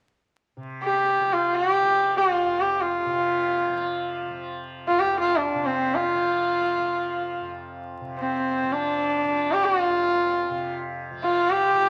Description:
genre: indian classical, Hindustani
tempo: free time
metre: none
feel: none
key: unclear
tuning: A4 = 440 Hz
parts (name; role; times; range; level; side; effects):
- tanpura; drone; 0.6-11.9 s; F2 to F3; -37 LUFS; equal; none
- rich sarangi; melody; 0.8-11.9 s; C4 to G4; -24 LUFS; equal; none
room: wet small room reverb, RT60 0.6 s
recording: vinyl crackle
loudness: -24 LUFS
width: mono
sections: 0.6-11.9 A section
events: none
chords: none

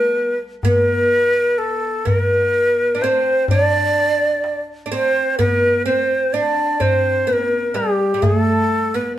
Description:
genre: Arabic maqam ensemble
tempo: 127 BPM (eighths)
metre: 10/8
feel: straight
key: unclear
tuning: A4 = 442 Hz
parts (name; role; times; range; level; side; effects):
- breathy bright ney; melody; 0.0-9.2 s; G4 to D5; -17 LUFS; equal; none
- oud; second line; 0.0-9.2 s; G3 to D4; -23 LUFS; right 2 dB; none
- darbuka; percussion; 0.6-9.1 s; none; -21 LUFS; left 1 dB; none
room: wet stone room reverb, RT60 0.9 s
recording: band playing live in one room, faint mains hum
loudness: -15 LUFS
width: side -12 dB against mid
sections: 0.0-9.2 A section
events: none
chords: none

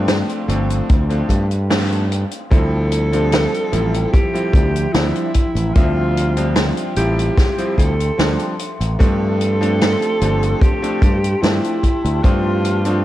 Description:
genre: vaporwave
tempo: 74 BPM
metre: 4/4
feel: straight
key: D minor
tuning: A4 = 441 Hz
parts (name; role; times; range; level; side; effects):
- bright electric grand piano; accompaniment; 0.0-13.0 s; F3 to E5; -23 LUFS; equal; wide subtle chorus, analog delay
- warbly tape-like pad; sustained chords; 0.0-13.0 s; F3 to C6; -30 LUFS; equal; chorus, built-in reverb
- growling fingered electric bass; bass; 0.0-13.0 s; G1 to G2; -19 LUFS; equal; overdrive
- swinging big-band drum kit; drums; 0.1-13.0 s; hi-hat, snare drum; -23 LUFS; equal; none
- kick drum; drums; 0.9-12.4 s; none; -14 LUFS; equal; none
- mellow alto saxophone; melody; 2.5-13.0 s; E4 to A4; -22 LUFS; right 1 dB; tape echo
room: light reverb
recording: none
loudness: -15 LUFS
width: side -14 dB against mid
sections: 0.0-2.5 A section; 2.5-13.0 B section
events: band accent 1.7-2.1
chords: 0.0 G9sus4; 2.5 Dm11; 9.0 G9sus4

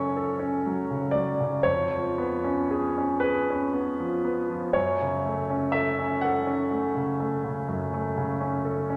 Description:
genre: classical, romantic nocturne for solo piano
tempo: 38-42 BPM (dotted quarters)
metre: 12/8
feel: rubato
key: F# minor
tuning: A4 = 442 Hz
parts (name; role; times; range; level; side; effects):
- clear grand piano; solo; 0.0-9.0 s; E#2 to F#5; -27 LUFS; equal; none
room: wet scoring stage reverb, RT60 1.9 s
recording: none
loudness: -27 LUFS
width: mono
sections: 0.0-9.0 A section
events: none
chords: 0.0 F#m; 1.6 C#7/E#; 4.7 F#m

